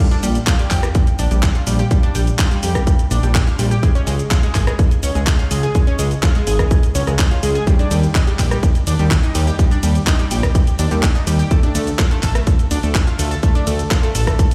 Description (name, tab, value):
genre	progressive house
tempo	125 BPM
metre	4/4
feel	straight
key	Bb major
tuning	A4 = 441 Hz
part	analog pluck	arpeggios	0.0-14.3 s	G3 to A5	-25 LUFS	equal	chorus, sidechain pumping, dub echo
part	house drum kit	drums	0.1-14.5 s	cabasa, handclaps, hi-hat, ride cymbal, rim click	-27 LUFS	equal	none
part	fat analog bass	bass	0.2-14.3 s	Ab1 to F2	-20 LUFS	equal	sidechain pumping
part	electronic kick drum	drums	0.5-14.5 s	none	-17 LUFS	equal	none
room	little or no reverb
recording	played on a big sound system in a bare room, large studio reverb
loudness	-16 LUFS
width	mono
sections	0.0-14.5 A section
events	none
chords	0.0 Bb6; 3.8 Db; 7.7 Ebmaj7; 11.5 Dm